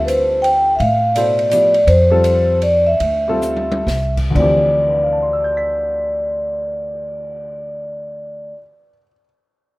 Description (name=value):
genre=modal jazz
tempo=117-167 BPM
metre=3/4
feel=swing 64% on 8ths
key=D dorian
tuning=A4 = 439 Hz
part: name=dark baby grand piano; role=accompaniment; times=0.0-9.2 s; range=D2 to B6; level=-23 LUFS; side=left 1 dB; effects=none
part: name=upright bass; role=bass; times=0.0-8.5 s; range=C2 to A2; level=-20 LUFS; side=equal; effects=none
part: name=vibraphone with soft mallets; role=melody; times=0.1-8.5 s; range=B4 to G5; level=-16 LUFS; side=equal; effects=none
part: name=open jazz drum kit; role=drums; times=0.1-7.3 s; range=crash cymbal, cymbal swell, hi-hat, kick drum, ride cymbal, snare drum, toms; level=-30 LUFS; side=equal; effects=none
room=light reverb, studio reverb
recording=rough home demo mix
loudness=-13 LUFS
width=side -20 dB against mid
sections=0.0-4.4 A section; 4.4-7.4 B section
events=slowing down 1.9-4.4; drum fill 3.4-3.9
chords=0.0 Dm11